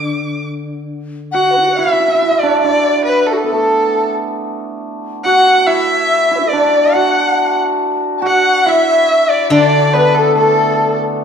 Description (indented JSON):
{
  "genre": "chinese traditional, Chinese chamber ensemble",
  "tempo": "70 BPM",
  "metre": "4/4",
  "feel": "rubato",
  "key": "D gong mode",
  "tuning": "A4 = 441 Hz",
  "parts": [
    { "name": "clear erhu", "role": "melody", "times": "0.0-11.0 s", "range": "F#4 to D6", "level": "-14 LUFS", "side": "equal", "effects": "none" },
    { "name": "steel-string zither", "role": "accompaniment", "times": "0.0-1.8, 9.5-11.2 s", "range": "D3", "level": "-18 LUFS", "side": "left 3 dB", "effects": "none" },
    { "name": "hammered dulcimer", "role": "second line", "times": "1.3-11.2 s", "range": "A3 to F#4", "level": "-16 LUFS", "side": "right 3 dB", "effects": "none" },
    { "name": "reedy large dizi", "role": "second line", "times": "1.3-11.0 s", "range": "D4 to A5", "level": "-16 LUFS", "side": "left 3 dB", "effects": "none" }
  ],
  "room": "wet recital hall reverb, RT60 1.5 s",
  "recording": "dark, warm production",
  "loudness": "-11 LUFS",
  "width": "side -7 dB against mid",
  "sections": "0.9-11.2 A section",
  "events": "none",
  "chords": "none"
}